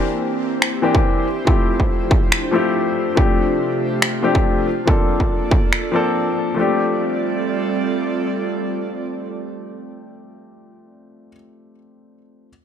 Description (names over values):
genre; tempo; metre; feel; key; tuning
future bass; 141 BPM; 4/4; half-time; F major; A4 = 440 Hz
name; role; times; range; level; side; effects
warm grand piano; accompaniment; 0.0-12.5 s; E3 to A4; -20 LUFS; left 3 dB; sidechain pumping, ping-pong delay
airy breathy pad; sustained chords; 0.0-10.7 s; C3 to D5; -24 LUFS; right 2 dB; chorus, sidechain pumping
electronic finger snaps; drums; 0.6-5.8 s; none; -18 LUFS; equal; none
electronic kick drum; drums; 0.9-5.6 s; none; -17 LUFS; equal; distortion
room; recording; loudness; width
light reverb; none; -16 LUFS; side -8 dB against mid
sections
0.0-6.6 A section; 6.6-10.0 B section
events
none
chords
0.0 C7; 1.3 Dm11; 3.2 F69/C; 4.7 Bbmaj7; 6.6 F69